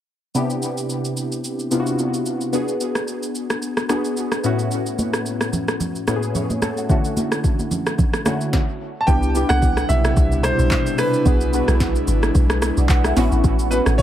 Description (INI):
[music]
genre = amapiano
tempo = 110 BPM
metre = 4/4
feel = swing 55% on 16ths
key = unclear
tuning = A4 = 441 Hz
[part]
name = warm analog keys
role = accompaniment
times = 0.3-14.0 s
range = A2 to F#5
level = -22 LUFS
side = left 1 dB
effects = chorus, phaser, dub echo
[part]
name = smooth R&B drum kit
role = drums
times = 0.3-14.0 s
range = handclaps, hi-hat, kick drum, rim click, shaker, snare drum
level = -21 LUFS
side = equal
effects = overdrive
[part]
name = congas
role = percussion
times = 5.0-8.4 s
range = none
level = -26 LUFS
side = right 2 dB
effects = none
[part]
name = bright baby grand piano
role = melody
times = 9.0-14.0 s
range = B4 to A5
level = -22 LUFS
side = right 1 dB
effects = dub echo
[part]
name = airy breathy pad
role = sustained chords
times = 9.4-14.0 s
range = B2 to F#4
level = -25 LUFS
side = equal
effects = chorus, sidechain pumping
[part]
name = deep log drum bass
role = bass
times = 9.1-14.0 s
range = G#1 to C2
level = -19 LUFS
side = equal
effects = none
[sound]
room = light reverb, digital ambience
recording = echo-heavy mix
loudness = -18 LUFS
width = side -11 dB against mid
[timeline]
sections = 0.3-9.1 A section; 9.1-14.0 B section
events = stop 8.5-9.1; drop 9.1-14.0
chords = 0.3 Cmaj9; 2.5 Bm6; 4.4 A69; 6.9 Dmaj9; 9.1 Cmaj9; 11.3 E7; 13.2 A69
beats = | 0.35 0.90 1.44 1.99 | 2.53 3.08 3.62 4.17 | 4.71 5.26 5.80 6.35 | 6.89 7.44 7.99 8.53 | 9.08 9.62 10.17 10.71 | 11.26 11.80 12.35 12.89 | 13.44 13.99